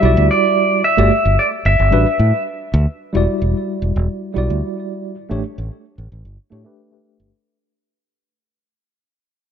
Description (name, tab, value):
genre	sunset chillout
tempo	111 BPM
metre	4/4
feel	straight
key	E minor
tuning	A4 = 439 Hz
part	pedal steel guitar	melody	0.0-2.4 s	D5 to E5	-16 LUFS	equal	digital delay
part	tine electric piano	accompaniment	0.0-7.3 s	G3 to D5	-20 LUFS	moving between left 4 dB and right 5 dB	overdrive, fast stereo tremolo, auto-pan, low-pass filter, digital delay
part	fingered electric bass	bass	0.0-7.3 s	E1 to A2	-16 LUFS	equal	none
room	light reverb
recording	none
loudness	-14 LUFS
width	side -8 dB against mid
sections	0.0-3.0 A section; 3.0-7.3 B section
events	fade-out 3.0-7.3; filter sweep on tine electric piano 3.0-7.3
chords	0.0 Em9; 0.8 N.C.; 1.9 A13sus4; 3.0 Em9; 5.2 A9sus4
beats	0.30 | 0.84 1.38 1.92 2.46 | 3.00 3.54 4.08 4.62 | 5.17 5.71 6.25 6.79